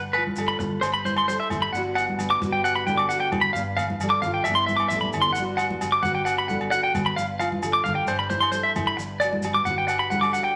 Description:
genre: highlife guitar band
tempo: 132 BPM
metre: 4/4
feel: straight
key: G major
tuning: A4 = 439 Hz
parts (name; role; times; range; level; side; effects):
- picked steel-string acoustic guitar; accompaniment; 0.0-10.6 s; G2 to B4; -34 LUFS; equal; none
- fingered electric bass; bass; 0.0-10.4 s; G1 to A1; -39 LUFS; equal; none
- clean electric guitar; arpeggios; 0.1-10.5 s; B4 to D6; -25 LUFS; equal; spring reverb
- agogo bells; percussion; 0.1-10.3 s; none; -36 LUFS; equal; none
- congas; percussion; 0.3-10.2 s; none; -34 LUFS; equal; none
- maracas; percussion; 0.4-10.4 s; none; -45 LUFS; equal; none
room: wet studio reverb, RT60 0.7 s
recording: vinyl crackle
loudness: -24 LUFS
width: mono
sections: 0.0-10.6 A section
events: drum fill 4.9-5.4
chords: 0.0 G7; 0.8 Cmaj7/G; 1.7 Gmaj7; 3.5 G7; 4.5 Cmaj7/G; 5.4 Gmaj7; 7.2 G7; 8.1 Cmaj7/G; 9.0 Gmaj7

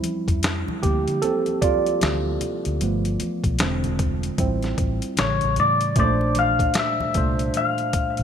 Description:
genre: R&B, neo-soul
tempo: 76 BPM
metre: 4/4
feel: swing 62% on 16ths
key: D minor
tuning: A4 = 440 Hz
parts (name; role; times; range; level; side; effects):
- tine electric piano; accompaniment; 0.0-8.2 s; Bb2 to D5; -24 LUFS; right 3 dB; overdrive, lush chorus
- boom bap sampler-style drum kit; drums; 0.0-8.2 s; hi-hat, kick drum, snare drum; -25 LUFS; left 1 dB; none
- congas; percussion; 0.0-7.9 s; none; -37 LUFS; left 4 dB; none
- vintage muted fingered electric bass; bass; 0.3-8.2 s; E1 to D3; -26 LUFS; left 1 dB; none
- clean electric guitar; melody; 5.2-8.2 s; C#5 to F5; -22 LUFS; left 4 dB; lush chorus
room: moderate plate reverb, RT60 2.9 s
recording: bright 1980s-style digital production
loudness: -20 LUFS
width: side -8 dB against mid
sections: 0.0-6.0 A section; 6.0-8.2 B section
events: tine electric piano solo 0.0-6.0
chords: 0.0 Dm11; 2.8 G9; 3.6 Eaug7; 4.4 Am7; 5.2 A7; 6.0 Bbmaj9

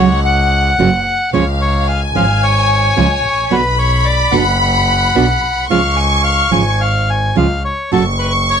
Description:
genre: tango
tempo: 110 BPM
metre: 4/4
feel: rubato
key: unclear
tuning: A4 = 440 Hz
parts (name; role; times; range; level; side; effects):
- bandoneon; melody; 0.0-8.6 s; A4 to G#5; -17 LUFS; left 2 dB; none
- warm studio violin section; second line; 0.0-8.6 s; E#5 to C#6; -17 LUFS; left 1 dB; none
- nylon-string guitar; accompaniment; 0.0-8.0 s; B2 to F#4; -14 LUFS; right 6 dB; none
- rich double bass; bass; 0.0-8.6 s; F#1 to C#2; -16 LUFS; equal; none
room: light reverb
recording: close, detailed microphones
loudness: -11 LUFS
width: side -7 dB against mid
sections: 0.0-8.6 A section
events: none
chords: 0.0 F#5; 1.3 C#; 3.5 Bm; 5.7 C#; 7.9 F#m

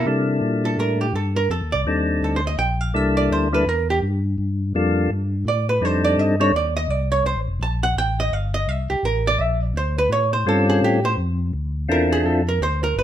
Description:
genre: soul jazz organ trio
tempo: 168 BPM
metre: 4/4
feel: swing 62% on 8ths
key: C mixolydian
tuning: A4 = 441 Hz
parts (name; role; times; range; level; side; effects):
- archtop guitar, miked and amplified; accompaniment; 0.0-13.0 s; G4 to A5; -22 LUFS; right 3 dB; none
- tonewheel organ; bass; 0.0-13.0 s; F1 to C3; -23 LUFS; equal; overdrive, chorus vibrato, slow rotary speaker
- percussive tonewheel organ; melody; 0.1-6.5, 10.5-12.4 s; G3 to A4; -20 LUFS; left 2 dB; slow rotary speaker
room: moderate club reverb, RT60 0.9 s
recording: minimal, uncompressed stereo recording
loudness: -18 LUFS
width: side -11 dB against mid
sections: 0.1-13.0 A section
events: hollow-body jazz guitar solo 0.1-13.0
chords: 0.1 C13; 1.5 F13; 2.9 C13; 4.4 Gm7; 5.1 Gadd9; 5.8 F13; 8.7 Csus2; 10.1 A7alt; 11.5 Dm7

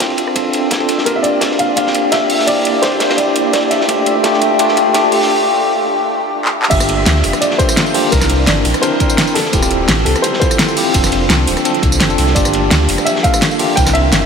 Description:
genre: liquid drum and bass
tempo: 170 BPM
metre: 4/4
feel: straight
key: G dorian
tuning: A4 = 440 Hz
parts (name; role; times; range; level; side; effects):
- bright tine electric piano; accompaniment; 0.0-14.3 s; A3 to Bb4; -16 LUFS; equal; medium stereo tremolo, ping-pong delay
- crunchy breakbeat drum kit; drums; 0.0-14.3 s; hi-hat, ride cymbal, snare drum; -21 LUFS; equal; high-pass filter on cymbals, high-pass filter on hats, high-pass filter on snare, high-pass filter on room
- electronic kick drum; drums; 0.0-13.8 s; none; -19 LUFS; equal; high-pass filter on kick
- pop drum kit; drums; 0.0-14.2 s; crash cymbal, handclaps, hi-hat, rim click, snare drum, tambourine; -16 LUFS; equal; high-pass filter on snare, high-pass filter on hats, high-pass filter on perc, high-pass filter on cymbals
- dark grand piano; melody; 1.1-14.3 s; A4 to G5; -18 LUFS; equal; tape echo
- sub bass with octave; bass; 6.7-14.3 s; D1 to D2; -17 LUFS; equal; none
room: wet huge ambient reverb, RT60 9.0 s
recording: dreamy mix soaked in reverb, high-pass filter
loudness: -11 LUFS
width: side -6 dB against mid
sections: 0.0-6.7 A section; 6.7-14.3 B section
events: build-up 0.0-6.7; drum fill 1.1-5.3, 6.4; break 5.3-6.7; drop 6.7-14.3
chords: 0.0 F6; 1.1 Gm7; 2.5 C9; 3.7 Dmadd9; 5.3 N.C.; 6.7 Gm7; 8.1 C9; 9.4 Dm11; 10.9 F6; 12.4 Gm7

